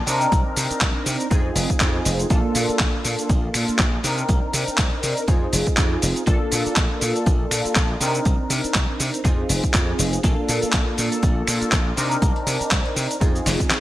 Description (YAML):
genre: filtered disco house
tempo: 121 BPM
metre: 4/4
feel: swing 57% on 16ths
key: Bb major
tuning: A4 = 440 Hz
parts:
  - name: funky polysynth comp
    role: accompaniment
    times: 0.0-13.8 s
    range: Bb3 to Bb4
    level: -24 LUFS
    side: equal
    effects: chorus, phaser, cassette tape, sidechain pumping
  - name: slap bass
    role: bass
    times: 0.1-13.6 s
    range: F1 to C3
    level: -26 LUFS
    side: equal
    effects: sidechain pumping
  - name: dusty soul sampler-style drum kit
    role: drums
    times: 0.1-13.8 s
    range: finger snaps, handclaps, hi-hat, shaker, snare drum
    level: -23 LUFS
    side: equal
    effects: sidechain pumping on hats, studio reverb, sidechain pumping on perc, sidechain pumping on cymbals, gated reverb
  - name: electronic kick drum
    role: drums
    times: 0.3-13.7 s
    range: none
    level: -21 LUFS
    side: equal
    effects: studio reverb
room: light reverb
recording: bright 1980s-style digital production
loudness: -18 LUFS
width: side -15 dB against mid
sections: 0.0-13.8 A section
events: drum fill 13.5-13.8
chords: 0.1 Cm9; 1.3 Fm7; 2.3 Bbmaj7; 4.0 Cm9; 5.3 Fm7; 6.3 Bbmaj7; 8.0 Cm9; 9.2 Fm7; 10.2 Bbmaj7; 12.0 Cm9; 13.2 Fm7